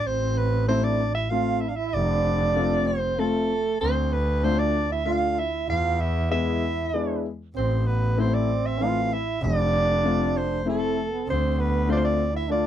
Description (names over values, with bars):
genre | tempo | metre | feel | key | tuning
klezmer | 96 BPM | 3/4 | straight | unclear | A4 = 440 Hz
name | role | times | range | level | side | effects
mellow soprano saxophone | melody | 0.0-12.7 s | A4 to F5 | -26 LUFS | equal | none
clear trombone | second line | 0.0-12.7 s | A3 to F4 | -30 LUFS | right 15 dB | none
bright double bass | bass | 0.0-12.4 s | F1 to E2 | -26 LUFS | equal | none
warm upright piano | accompaniment | 0.7-12.7 s | E3 to F4 | -27 LUFS | left 6 dB | none
room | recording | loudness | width
little or no reverb | dry, close 1970s-style studio recording | -22 LUFS | side -10 dB against mid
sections
0.1-12.7 A section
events
none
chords
0.1 Am; 1.9 F; 3.8 Dm; 5.7 E; 7.6 Am; 9.4 F; 11.3 Dm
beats
| 0.06 0.69 1.31 | 1.94 2.57 3.19 | 3.82 4.44 5.07 | 5.69 6.31 6.93 | 7.56 8.18 8.80 | 9.42 10.04 10.66 | 11.27 11.89 12.50